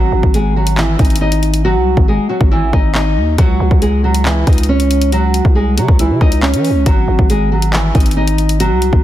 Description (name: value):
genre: hip hop, drill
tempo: 138 BPM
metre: 4/4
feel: half-time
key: C# harmonic minor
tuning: A4 = 440 Hz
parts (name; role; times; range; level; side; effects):
- nylon-string guitar; melody; 0.0-9.0 s; E3 to D#5; -16 LUFS; right 1 dB; low-pass filter, ping-pong delay
- growling 808-style bass; bass; 0.0-9.0 s; G#1 to E3; -15 LUFS; equal; none
- drill drum kit; drums; 0.2-9.0 s; handclaps, hi-hat, kick drum; -14 LUFS; equal; none
room: digital ambience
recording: dense, heavily limited modern master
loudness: -10 LUFS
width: side -13 dB against mid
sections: 0.0-9.0 A section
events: hi-hats muted 1.6-3.4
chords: 0.0 G#5; 3.4 C#m; 6.9 G#5